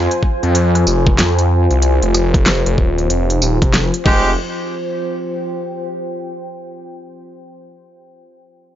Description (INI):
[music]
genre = glitch hop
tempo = 94 BPM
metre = 4/4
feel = swing 63% on 16ths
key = F minor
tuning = A4 = 440 Hz
[part]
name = phased detuned saw bass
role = bass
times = 0.0-4.4 s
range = Eb1 to F2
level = -15 LUFS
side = equal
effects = phaser, overdrive
[part]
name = deep dark ambient pad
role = texture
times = 0.0-6.9 s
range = F4 to Ab5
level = -21 LUFS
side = equal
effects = chorus, built-in reverb, sidechain pumping
[part]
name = pop drum kit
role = drums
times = 0.1-4.2 s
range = crash cymbal, hi-hat, rim click, snare drum, tambourine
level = -19 LUFS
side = equal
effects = studio reverb
[part]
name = electronic kick drum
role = drums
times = 0.2-4.2 s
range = none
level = -14 LUFS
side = equal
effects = studio reverb
[part]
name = clear horn section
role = stabs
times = 4.1-4.3 s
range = Ab3 to G4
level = -19 LUFS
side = right 1 dB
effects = sidechain pumping, analog delay
[sound]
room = digital ambience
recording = dry, gritty hardware recording, nothing above 7.5 kHz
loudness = -13 LUFS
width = side -11 dB against mid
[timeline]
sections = 0.0-4.4 A section; 4.4-6.9 B section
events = none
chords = 0.0 Fm7; 4.4 Fsus2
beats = 0.55 1.19 | 1.82 2.46 3.10 3.74 | 4.38 5.01 5.65 6.29